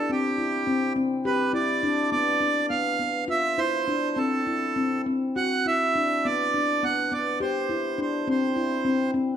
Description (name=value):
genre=contemporary instrumental, contemporary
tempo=206 BPM (eighths)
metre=7/8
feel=straight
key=unclear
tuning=A4 = 442 Hz
part: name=accordion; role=melody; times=0.0-9.1 s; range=G4 to F#5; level=-25 LUFS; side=right 4 dB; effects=none
part: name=handpan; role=arpeggios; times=0.1-9.3 s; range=B3 to G4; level=-26 LUFS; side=left 3 dB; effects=none
room=moderate recital hall reverb, RT60 1.6 s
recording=minimal, uncompressed stereo recording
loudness=-22 LUFS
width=side -9 dB against mid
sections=0.0-9.4 A section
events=none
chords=0.0 C; 1.2 G7; 3.3 Fmaj7; 5.4 Bm; 7.4 C